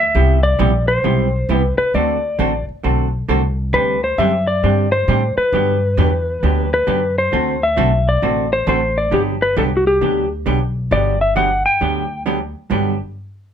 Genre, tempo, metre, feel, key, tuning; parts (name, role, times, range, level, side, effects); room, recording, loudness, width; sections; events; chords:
country, western swing; 134 BPM; 4/4; swing 65% on 8ths; G major; A4 = 444 Hz
clean lap steel guitar; melody; 0.0-12.2 s; F#4 to G5; -17 LUFS; left 2 dB; plate reverb
upright bass; bass; 0.0-13.0 s; G1 to A2; -19 LUFS; equal
hollow-body jazz guitar; accompaniment; 0.2-12.9 s; G2 to A4; -20 LUFS; right 4 dB
moderate club reverb, RT60 0.5 s; -14 LUFS; side -8 dB against mid
0.0-10.9 A section; 10.9-12.7 B section
0.1 Cmaj7; 1.9 D7; 3.7 D7sus4; 5.5 Gmaj7; 7.3 D7; 9.1 Gmaj7